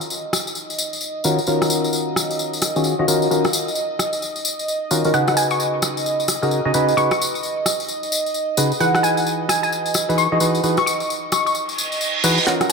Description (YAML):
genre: UK garage, two-step garage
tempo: 131 BPM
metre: 4/4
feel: swing 62% on 16ths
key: unclear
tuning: A4 = 440 Hz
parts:
  - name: warm analog pad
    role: sustained chords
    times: 0.0-12.7 s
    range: Eb5 to F5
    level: -26 LUFS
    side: right 3 dB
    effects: chorus
  - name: tambourine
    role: percussion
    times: 0.0-12.7 s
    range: none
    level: -24 LUFS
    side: left 2 dB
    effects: none
  - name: garage drum kit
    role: drums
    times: 0.3-12.7 s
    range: hi-hat, rim click, snare drum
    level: -27 LUFS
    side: equal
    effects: studio reverb
  - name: percussive organ stab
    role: stabs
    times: 1.2-12.7 s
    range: Db3 to Eb5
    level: -20 LUFS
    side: equal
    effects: lush chorus, analog delay
  - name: glassy wavetable pluck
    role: melody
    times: 5.1-12.7 s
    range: Gb5 to Db6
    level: -22 LUFS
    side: left 1 dB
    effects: chorus, cassette tape, analog delay
  - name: reverse cymbal and riser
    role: sound effects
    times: 11.8-12.7 s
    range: none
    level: -21 LUFS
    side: right 5 dB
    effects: none
room: wet plate reverb, RT60 2.1 s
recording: dreamy mix soaked in reverb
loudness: -17 LUFS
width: side -4 dB against mid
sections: 0.0-12.5 A section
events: filter sweep on synth stab 0.0-12.5; reverse cymbal 11.8-12.5; drum fill 12.5; riser 12.5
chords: 0.0 Ebm9; 5.1 Db7sus4; 8.8 Emaj9